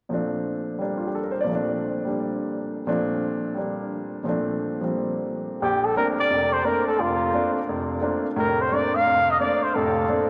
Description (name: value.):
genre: jazz.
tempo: 174 BPM.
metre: 4/4.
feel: swing 65% on 8ths.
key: Bb major.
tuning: A4 = 440 Hz.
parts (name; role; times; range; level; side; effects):
warm baby grand piano; accompaniment; 0.1-10.3 s; F1 to D5; -27 LUFS; equal; none.
breathy trumpet; melody; 5.6-10.3 s; F4 to F5; -24 LUFS; equal; none.
room: wet cathedral reverb, RT60 5.6 s.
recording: recorded in a church or concert hall.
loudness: -24 LUFS.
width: mono.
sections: 0.1-5.6 A section; 5.6-10.3 B section.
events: none.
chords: 0.1 Bbmaj9.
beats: | 0.10 0.45 0.79 1.14 | 1.48 1.83 2.17 2.52 | 2.86 3.21 3.55 3.90 | 4.24 4.58 4.93 5.27 | 5.62 5.96 6.31 6.65 | 6.99 7.34 7.68 8.03 | 8.37 8.71 9.06 9.40 | 9.74 10.09.